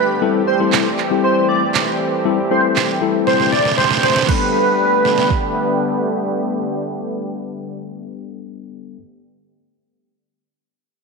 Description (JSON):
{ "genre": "dance-pop", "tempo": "118 BPM", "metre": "4/4", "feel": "straight", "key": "G major", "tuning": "A4 = 440 Hz", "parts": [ { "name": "airy dreamy lead", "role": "melody", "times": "0.0-5.8 s", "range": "B4 to D5", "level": "-18 LUFS", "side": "right 2 dB", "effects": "chorus, sidechain pumping, low-pass filter, tape echo" }, { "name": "lush unison pad", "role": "sustained chords", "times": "0.0-9.0 s", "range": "D3 to G4", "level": "-22 LUFS", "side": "right 1 dB", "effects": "chorus, sidechain pumping, low-pass filter" }, { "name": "tine electric piano", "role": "accompaniment", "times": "0.2-9.0 s", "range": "G3 to A4", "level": "-22 LUFS", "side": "left 13 dB", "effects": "medium stereo tremolo, sidechain pumping, low-pass filter" }, { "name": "deep house drum kit", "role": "drums", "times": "0.7-5.4 s", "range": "crash cymbal, handclaps, kick drum, snare drum", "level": "-20 LUFS", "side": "right 6 dB", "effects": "none" } ], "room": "moderate echo chamber reverb, RT60 1.9 s, digital ambience", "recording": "1960s-style stereo with parts hard left and right", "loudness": "-14 LUFS", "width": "side -3 dB against mid", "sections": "0.0-4.3 A section; 4.3-8.4 B section", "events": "filter sweep 0.0-4.3; drum fill 3.3-4.3", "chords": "0.2 Am7; 4.3 Gadd9", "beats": "| 0.22 0.73 1.24 1.74 | 2.25 2.76 3.27 3.78 | 4.29 4.79 5.30 5.81 | 6.32 6.83 7.34 7.84" }